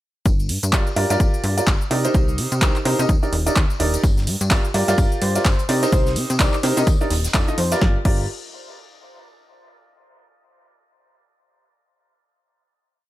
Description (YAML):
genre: piano house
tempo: 127 BPM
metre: 4/4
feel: swing 59% on 16ths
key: G minor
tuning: A4 = 440 Hz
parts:
  - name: plucky analog bass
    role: bass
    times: 0.3-8.3 s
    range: Eb1 to C3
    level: -23 LUFS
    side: equal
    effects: sidechain pumping
  - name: electronic kick drum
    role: drums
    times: 0.3-8.2 s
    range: none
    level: -18 LUFS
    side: equal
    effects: overdrive
  - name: punchy analog drum machine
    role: drums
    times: 0.3-8.2 s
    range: crash cymbal, handclaps, hi-hat, shaker, snare drum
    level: -25 LUFS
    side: equal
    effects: overdrive
  - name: tambourine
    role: percussion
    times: 0.3-7.8 s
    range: none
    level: -36 LUFS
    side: left 5 dB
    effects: none
  - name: clear upright piano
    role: riff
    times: 0.7-8.2 s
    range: Eb4 to Eb5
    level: -23 LUFS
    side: right 1 dB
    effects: sidechain pumping, dub echo
  - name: deep reggae drum kit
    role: drums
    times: 4.0-7.8 s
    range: hi-hat, snare drum, tambourine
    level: -35 LUFS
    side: right 1 dB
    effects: none
  - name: breathy flute-like synth lead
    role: melody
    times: 5.2-7.8 s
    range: C5 to D5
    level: -30 LUFS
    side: left 3 dB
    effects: lush chorus, dub echo
room: studio reverb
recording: none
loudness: -17 LUFS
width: side -15 dB against mid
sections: 0.3-7.8 groove; 7.8-9.7 final chord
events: none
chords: 0.3 Gm7; 1.9 Cm7; 3.1 Ebmaj7; 4.0 Gm7; 5.7 Cm7; 6.9 Ebmaj7; 7.3 F7; 7.8 Gm7